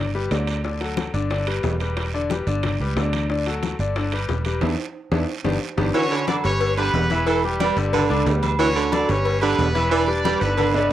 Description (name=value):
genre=latin, salsa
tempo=181 BPM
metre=4/4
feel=straight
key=unclear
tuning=A4 = 439 Hz
part: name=bright concert grand piano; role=accompaniment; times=0.0-10.9 s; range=D3 to F#5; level=-26 LUFS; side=left 5 dB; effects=cassette tape
part: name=fingered electric bass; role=bass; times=0.0-10.9 s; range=E1 to E2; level=-24 LUFS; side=right 1 dB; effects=none
part: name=bongos and cowbell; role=percussion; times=0.1-10.7 s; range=none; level=-29 LUFS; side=left 6 dB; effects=none
part: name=congas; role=percussion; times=0.1-10.9 s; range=none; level=-30 LUFS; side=left 5 dB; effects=none
part: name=guiro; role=percussion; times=0.3-10.9 s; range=none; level=-39 LUFS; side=right 8 dB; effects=none
part: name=timbales and agogo bells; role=percussion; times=0.3-10.9 s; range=none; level=-29 LUFS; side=right 7 dB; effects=none
part: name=brilliant horn section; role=melody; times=5.9-10.9 s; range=G3 to D5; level=-25 LUFS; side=right 1 dB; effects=cassette tape
part: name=breathy baritone saxophone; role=second line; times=5.9-10.9 s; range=D3 to G3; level=-23 LUFS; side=right 6 dB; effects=cassette tape
room=moderate studio reverb, RT60 0.7 s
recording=home recording on cassette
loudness=-19 LUFS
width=side -12 dB against mid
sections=0.0-5.9 A section; 5.9-10.9 B section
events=band accent 4.6-5.9; drum fill 5.0-5.9, 10.4-10.9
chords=0.0 G; 0.6 D; 1.3 Em7; 2.6 G; 3.3 D; 4.0 G; 4.6 E5; 5.3 G; 5.9 D; 6.6 G; 7.3 Em7; 7.9 G; 8.6 D; 9.3 G; 9.9 Em7